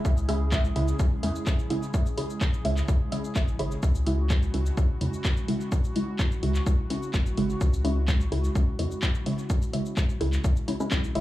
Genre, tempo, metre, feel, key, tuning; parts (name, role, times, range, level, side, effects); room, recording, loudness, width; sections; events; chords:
dub techno; 127 BPM; 4/4; straight; C# minor; A4 = 440 Hz
airy breathy pad; sustained chords; 0.0-11.2 s; G#3 to G#4; -37 LUFS; right 2 dB; chorus, sidechain pumping
filtered dub chord stab; stabs; 0.0-11.2 s; C#3 to E4; -30 LUFS; equal; chorus, phaser, sidechain pumping, dub echo
round analog bass; bass; 0.0-11.2 s; G#1 to E2; -28 LUFS; equal; sidechain pumping
electronic kick drum; drums; 0.1-11.0 s; -26 LUFS; equal
punchy analog drum machine; drums; 0.1-11.2 s; cabasa, handclaps, hi-hat; -36 LUFS; left 1 dB
digital ambience; dry, gritty hardware recording, cassette tape, small room reverb; -24 LUFS; side -15 dB against mid
0.0-11.2 A section
filter sweep on synth stab 0.0-11.2
0.0 C#m